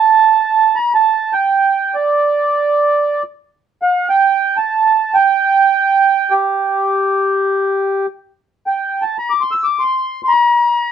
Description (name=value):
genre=Arabic maqam ensemble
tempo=free time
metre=none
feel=none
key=G maqam rast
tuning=A4 = 439 Hz
part: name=mellow accordion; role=solo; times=0.0-10.9 s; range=G4 to E6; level=-12 LUFS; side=right 3 dB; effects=none
room=light reverb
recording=close, detailed microphones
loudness=-12 LUFS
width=side -8 dB against mid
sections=0.0-8.4 A section; 8.4-10.9 A section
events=none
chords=none